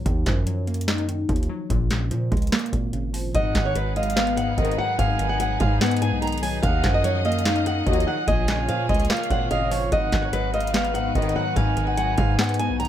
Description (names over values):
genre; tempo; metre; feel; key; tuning
hip hop, trap; 146 BPM; 4/4; half-time; unclear; A4 = 439 Hz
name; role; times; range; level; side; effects
glassy wavetable pluck; accompaniment; 0.0-12.9 s; Ab2 to Eb4; -27 LUFS; left 2 dB; chorus, low-pass filter
hard-hitting 808-style bass; bass; 0.0-12.9 s; Ab1 to Bb2; -26 LUFS; equal; none
booming analog drum machine; drums; 0.1-12.9 s; handclaps, hi-hat, kick drum, rim click, snare drum; -25 LUFS; equal; none
breathy flute-like synth lead; second line; 3.3-12.8 s; Db5 to Ab5; -28 LUFS; right 4 dB; chorus, ping-pong delay
clear symphonic string section; sustained chords; 3.3-12.9 s; Eb3 to Eb5; -32 LUFS; left 1 dB; none
picked old ladder-braced acoustic guitar; melody; 3.4-12.9 s; Cb5 to Bb5; -27 LUFS; left 1 dB; low-pass filter, plate reverb, ping-pong delay
dark brass ensemble; stabs; 4.6-4.9, 7.9-8.2, 11.2-11.4 s; Cb2 to Gb3; -28 LUFS; left 4 dB; none
room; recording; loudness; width
moderate studio reverb, RT60 0.6 s; none; -20 LUFS; side -11 dB against mid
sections
0.0-3.3 A section; 3.3-12.9 B section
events
break 0.0-3.3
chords
0.1 Ebmadd9; 1.7 Bbm7; 3.3 Abm7; 6.6 Ebmadd9; 8.3 Bbm7; 9.9 Abm7